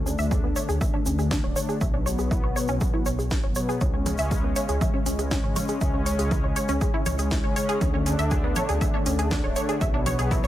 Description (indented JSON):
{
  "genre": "melodic techno",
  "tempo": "120 BPM",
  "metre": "4/4",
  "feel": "straight",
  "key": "C# phrygian",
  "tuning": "A4 = 440 Hz",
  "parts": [
    { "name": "brassy analog pad", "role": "stabs", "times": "0.0-10.5 s", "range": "B2 to D4", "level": "-29 LUFS", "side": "left 2 dB", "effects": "analog chorus, cassette tape, sidechain pumping, digital delay" },
    { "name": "dark detuned saw bass", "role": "bass", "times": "0.0-10.5 s", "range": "D1 to D2", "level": "-28 LUFS", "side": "equal", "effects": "sidechain pumping" },
    { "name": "wide unison pluck", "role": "arpeggios", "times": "0.1-10.5 s", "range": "B3 to E5", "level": "-29 LUFS", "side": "right 1 dB", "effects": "sidechain pumping, digital delay" },
    { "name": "tube shaker", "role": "percussion", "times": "0.1-10.5 s", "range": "none", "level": "-37 LUFS", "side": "right 2 dB", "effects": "none" },
    { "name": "electronic kick drum", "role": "drums", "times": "0.3-10.4 s", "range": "none", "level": "-26 LUFS", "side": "equal", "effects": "none" },
    { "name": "techno drum kit", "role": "drums", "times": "1.3-10.4 s", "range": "congas, hi-hat, snare drum", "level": "-33 LUFS", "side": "right 2 dB", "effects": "overdrive, sidechain pumping on hats, sidechain pumping on perc" }
  ],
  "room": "light reverb",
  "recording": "none",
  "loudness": "-22 LUFS",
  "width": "side -13 dB against mid",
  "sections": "0.0-10.5 A section",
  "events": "filter sweep on synth pluck 0.0-10.5; filter sweep on analog synth pad 0.0-10.5",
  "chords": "0.0 D5; 1.8 B5; 3.8 C#5; 7.8 D5; 9.8 B5",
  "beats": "0.31 0.81 1.31 | 1.81 2.31 2.81 3.31 | 3.81 4.31 4.81 5.31 | 5.81 6.31 6.81 7.31 | 7.81 8.31 8.81 9.31 | 9.81 10.31"
}